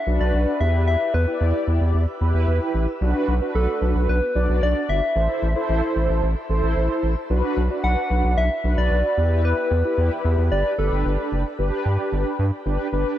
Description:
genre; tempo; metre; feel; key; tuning
synth-pop; 112 BPM; 4/4; straight; unclear; A4 = 440 Hz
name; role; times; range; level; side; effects
soft struck synth lead; melody; 0.0-11.3 s; A4 to F#5; -26 LUFS; left 1 dB; chorus, shimmer reverb, analog delay
mellow synth brass; accompaniment; 0.1-13.2 s; D4 to D5; -25 LUFS; equal; chorus, shimmer reverb
round analog bass; bass; 0.1-13.0 s; F#1 to G2; -20 LUFS; equal; none
room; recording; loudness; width
light reverb; dark, warm production; -19 LUFS; side -12 dB against mid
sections
0.0-11.6 A section; 11.6-13.2 B section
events
none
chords
0.0 Bm; 0.6 Em; 3.0 Bm; 5.2 Am; 7.3 Bm; 9.2 Em; 10.5 Gadd9; 11.6 G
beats
0.34 | 0.87 1.41 1.95 2.48 | 3.02 3.55 4.09 4.62 | 5.16 5.70 6.23 6.77 | 7.30 7.84 8.37 8.91 | 9.45 9.98 10.52 11.05 | 11.59 12.12 12.66

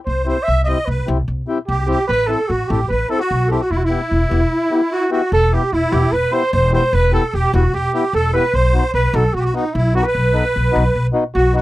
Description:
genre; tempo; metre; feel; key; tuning
klezmer; 149 BPM; 4/4; straight; E harmonic minor; A4 = 439 Hz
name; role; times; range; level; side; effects
breathy cornet; melody; 0.1-11.6 s; D#4 to E5; -19 LUFS; right 2 dB; none
musette accordion; second line; 0.1-11.6 s; D#4 to E5; -23 LUFS; equal; none
upright bass; bass; 0.1-11.6 s; E1 to C2; -18 LUFS; equal; none
mellow accordion; accompaniment; 0.3-11.6 s; B3 to A4; -20 LUFS; left 4 dB; none
room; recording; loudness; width
little or no reverb; dry, close 1970s-style studio recording; -15 LUFS; side -16 dB against mid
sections
0.0-5.3 A section; 5.3-11.6 A section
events
none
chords
0.0 C; 2.1 Am; 3.7 Em; 8.5 B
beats
0.07 | 0.47 0.88 1.28 1.69 | 2.09 2.49 2.90 3.30 | 3.70 4.11 4.51 4.91 | 5.32 5.72 6.12 6.53 | 6.93 7.33 7.73 8.13 | 8.54 8.94 9.34 9.74 | 10.14 10.54 10.95 11.35

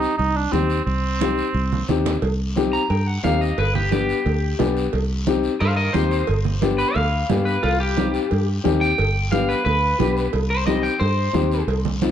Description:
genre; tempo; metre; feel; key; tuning
latin, cumbia; 178 BPM; 4/4; straight; C harmonic minor; A4 = 440 Hz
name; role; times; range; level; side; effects
mellow cor anglais; second line; 0.0-2.0 s; C4 to Eb4; -24 LUFS; right 5 dB; none
dark upright piano; accompaniment; 0.0-12.1 s; B3 to G4; -23 LUFS; left 6 dB; none
fingered electric bass; bass; 0.0-12.1 s; G1 to G2; -22 LUFS; equal; none
guiro; percussion; 0.0-12.1 s; none; -37 LUFS; left 4 dB; none
congas; percussion; 0.2-12.1 s; none; -28 LUFS; right 8 dB; none
cowbell and timbales; percussion; 2.2-11.9 s; none; -29 LUFS; right 5 dB; none
electric guitar at the edge of break-up; melody; 2.7-11.7 s; F4 to Bb5; -24 LUFS; left 1 dB; spring reverb
room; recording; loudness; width
moderate studio reverb, RT60 0.6 s; dark, warm production; -18 LUFS; side -9 dB against mid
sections
0.0-2.2 A section; 2.2-12.1 B section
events
cor anglais solo 0.0-2.2; drum fill 1.2-2.2; clean electric guitar solo 2.2-12.1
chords
0.0 Cm; 3.6 G; 4.9 Cm; 6.3 G7; 7.6 Cm; 9.0 G; 10.3 Cm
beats
0.19 0.53 | 0.87 1.21 1.55 1.89 | 2.23 2.57 2.90 3.24 | 3.58 3.92 4.26 4.60 | 4.93 5.27 5.61 5.95 | 6.29 6.62 6.96 7.30 | 7.64 7.97 8.31 8.65 | 8.99 9.32 9.66 10.00 | 10.34 10.67 11.01 11.35 | 11.68 12.02

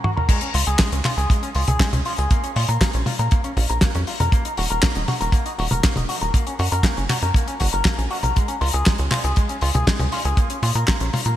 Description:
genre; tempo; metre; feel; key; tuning
italo disco; 119 BPM; 4/4; straight; unclear; A4 = 438 Hz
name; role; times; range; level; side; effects
electric guitar with an envelope filter; arpeggios; 0.0-11.4 s; Ab3 to Bb4; -25 LUFS; left 2 dB; vintage 12-bit sampler grit, shimmer reverb, digital delay
damped 70s drum kit; drums; 0.0-11.4 s; crash cymbal, handclaps, hi-hat, snare drum, toms; -23 LUFS; left 1 dB; none
kick drum; drums; 0.3-11.0 s; none; -19 LUFS; equal; none
tight sequencer bass; bass; 0.5-11.4 s; Eb1 to Bb2; -23 LUFS; right 1 dB; tube saturation
room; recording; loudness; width
light reverb, small room ambience; bright 1980s-style digital production; -18 LUFS; side -12 dB against mid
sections
0.3-11.4 A section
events
break 0.0; drum fill 0.0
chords
0.3 Db; 2.3 Bbm; 4.3 Ebm; 6.3 Gb; 8.4 Db; 10.4 Bbm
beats
| 0.29 0.80 1.30 1.80 | 2.31 2.81 3.32 3.82 | 4.32 4.83 5.33 5.84 | 6.34 6.84 7.35 7.85 | 8.36 8.86 9.37 9.87 | 10.38 10.88

